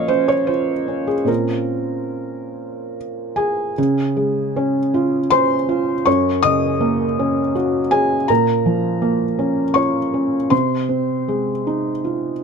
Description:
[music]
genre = neoclassical minimalist piano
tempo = 72-82 BPM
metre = 3/4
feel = rubato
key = Bb minor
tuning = A4 = 436 Hz
[part]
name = felt-muted upright piano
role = solo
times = 0.0-12.4 s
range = Gb2 to Eb6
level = -17 LUFS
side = equal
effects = none
[sound]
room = little or no reverb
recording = close, detailed microphones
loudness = -16 LUFS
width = side -5 dB against mid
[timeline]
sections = 0.0-3.8 A section; 3.8-12.4 B section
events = none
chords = 0.0 Bbm; 1.3 Bbmadd9; 3.8 Db; 6.1 Gb6; 8.3 Bbm; 10.5 Fm7/C

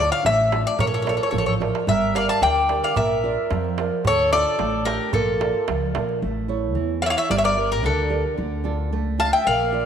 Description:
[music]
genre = greek folk, Greek bouzouki band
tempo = 111 BPM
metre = 2/4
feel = straight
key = unclear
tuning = A4 = 441 Hz
[part]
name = Greek bouzouki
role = melody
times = 0.0-9.9 s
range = A4 to A5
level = -21 LUFS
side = left 3 dB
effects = none
[part]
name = nylon-string guitar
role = accompaniment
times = 0.0-9.9 s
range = D3 to D5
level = -25 LUFS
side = right 6 dB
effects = none
[part]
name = upright bass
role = bass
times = 0.0-9.9 s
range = G1 to F2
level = -27 LUFS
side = left 1 dB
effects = none
[part]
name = darbuka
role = percussion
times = 0.3-6.2 s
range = none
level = -29 LUFS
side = right 4 dB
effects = none
[part]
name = mandolin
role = second line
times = 0.8-9.8 s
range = D4 to F5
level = -29 LUFS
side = right 5 dB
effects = none
[sound]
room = wet echo chamber reverb, RT60 2.2 s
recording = 1960s-style stereo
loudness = -19 LUFS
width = side -8 dB against mid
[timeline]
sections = 0.0-6.2 A section; 6.2-9.9 B section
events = drum fill 1.3-1.9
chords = 0.0 Dm; 0.8 Bb; 1.9 Gm; 3.0 Bb; 4.1 Dm; 5.1 Bb; 6.2 A; 7.3 Gm; 8.4 Dm

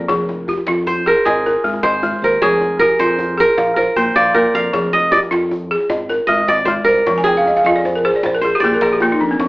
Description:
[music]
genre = west african traditional, West African string and xylophone music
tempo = 103 BPM (dotted quarters)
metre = 12/8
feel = straight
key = F dorian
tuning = A4 = 440 Hz
[part]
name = kora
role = melody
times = 0.0-9.5 s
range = F4 to F5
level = -15 LUFS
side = right 1 dB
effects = none
[part]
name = balafon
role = arpeggios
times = 0.0-9.5 s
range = F3 to Ab5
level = -17 LUFS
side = equal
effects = none
[part]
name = fingered electric bass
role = bass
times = 0.0-9.5 s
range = F1 to F2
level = -29 LUFS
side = equal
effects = none
[part]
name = djembe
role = percussion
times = 0.1-9.5 s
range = none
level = -27 LUFS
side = equal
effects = none
[sound]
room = moderate studio ambience, RT60 0.5 s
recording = AM radio sound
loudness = -13 LUFS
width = side -21 dB against mid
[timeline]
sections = 0.0-9.4 A section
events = kora solo 0.0-9.4; balafon fill 7.2-9.4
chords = 0.1 Fm; 1.3 Ab; 2.4 Fm; 3.6 Bb; 4.7 Fm; 5.9 Ab; 7.1 Fm; 8.2 Bb5

